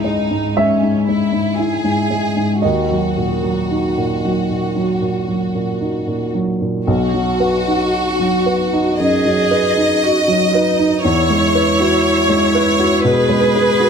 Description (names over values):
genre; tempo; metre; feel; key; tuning
neoclassical piano and strings; 55-60 BPM; 4/4; rubato; unclear; A4 = 440 Hz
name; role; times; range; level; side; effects
clear chamber violin section; melody; 0.0-13.9 s; C#4 to D#5; -18 LUFS; left 1 dB; none
dark upright piano; accompaniment; 0.0-13.9 s; B1 to E5; -16 LUFS; equal; none
rich viola; accompaniment; 9.0-13.9 s; D#4 to G#4; -19 LUFS; right 5 dB; none
room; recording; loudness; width
light reverb; close, detailed microphones; -14 LUFS; side -6 dB against mid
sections
0.0-6.9 A section; 6.9-13.9 A section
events
none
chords
0.0 C#m; 2.6 D#m; 6.9 B; 11.0 Eadd9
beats
0.56 1.58 | 2.63 3.70 4.76 5.81 | 6.87 7.92 8.99 10.02 | 11.03 12.03 13.03